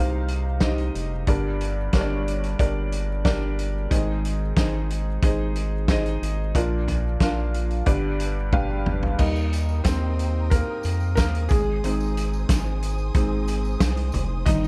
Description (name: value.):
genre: piano-driven pop.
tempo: 91 BPM.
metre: 4/4.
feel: straight.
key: unclear.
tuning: A4 = 440 Hz.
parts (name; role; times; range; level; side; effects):
felt-muted upright piano; accompaniment; 0.0-14.7 s; G2 to B5; -30 LUFS; equal; none.
round analog bass; bass; 0.0-14.7 s; F1 to F2; -28 LUFS; equal; none.
loose indie drum kit; drums; 0.3-14.6 s; crash cymbal, hi-hat, kick drum, snare drum, toms; -26 LUFS; equal; none.
warm studio string section; sustained chords; 9.2-14.7 s; Bb4 to Eb6; -41 LUFS; equal; plate reverb.
tambourine; percussion; 9.2-14.7 s; none; -48 LUFS; equal; none.
fingerpicked steel-string acoustic guitar; riff; 14.5-14.7 s; G2 to G4; -25 LUFS; equal; none.
room: little or no reverb.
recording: dark, warm production.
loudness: -24 LUFS.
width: mono.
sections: 0.0-9.2 A section; 9.2-14.7 B section.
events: felt piano fill 8.2-9.2; drum fill 8.5-9.2; felt piano solo 9.2-14.7.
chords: 0.0 Cm; 1.3 Gm; 3.9 Ab; 6.5 Bb; 7.9 G; 9.2 Eb; 11.5 Ab.